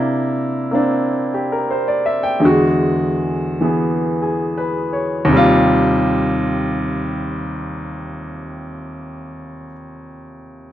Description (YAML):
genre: solo jazz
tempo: 83 BPM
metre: 4/4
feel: swing 69% on 8ths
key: unclear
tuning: A4 = 440 Hz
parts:
  - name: clear baby grand piano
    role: solo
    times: 0.0-10.7 s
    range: Eb2 to G5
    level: -16 LUFS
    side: equal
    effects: none
room: light reverb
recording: dry, close 1970s-style studio recording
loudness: -15 LUFS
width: side -12 dB against mid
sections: 0.0-5.3 A section; 5.3-8.2 B section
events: none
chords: 0.0 C9; 2.4 E9; 5.3 Eb69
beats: 0.24 0.96 1.69 | 2.41 3.13 3.85 4.57 | 5.30 6.02 6.74 7.46